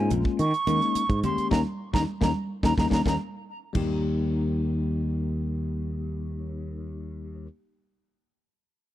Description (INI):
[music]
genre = electric jazz fusion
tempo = 107 BPM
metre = 4/4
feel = straight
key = Eb mixolydian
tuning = A4 = 440 Hz
[part]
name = hollow concert flute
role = melody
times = 0.0-3.2 s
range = Ab5 to Db6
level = -29 LUFS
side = right 3 dB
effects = tape echo
[part]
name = bell-like tine electric piano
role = accompaniment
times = 0.0-7.5 s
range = G3 to G4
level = -30 LUFS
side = left 7 dB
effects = medium stereo tremolo
[part]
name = sustaining fretless electric bass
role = bass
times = 0.0-7.5 s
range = Bb1 to Eb3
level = -28 LUFS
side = right 1 dB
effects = none
[part]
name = crisp fusion drum kit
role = drums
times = 0.1-3.9 s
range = crash cymbal, hi-hat, kick drum, snare drum, toms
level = -29 LUFS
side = right 1 dB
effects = none
[part]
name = congas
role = percussion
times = 0.1-4.0 s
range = none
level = -32 LUFS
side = right 3 dB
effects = none
[sound]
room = small room ambience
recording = dry, close 1970s-style studio recording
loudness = -24 LUFS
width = side -13 dB against mid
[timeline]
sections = 0.0-3.8 A section; 3.8-6.0 B section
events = flute solo 0.0-3.8; band accent 1.5-3.8; tine electric piano fill 2.6-3.8; drum fill 3.3-3.8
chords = 0.0 Eb7sus4; 3.8 Eb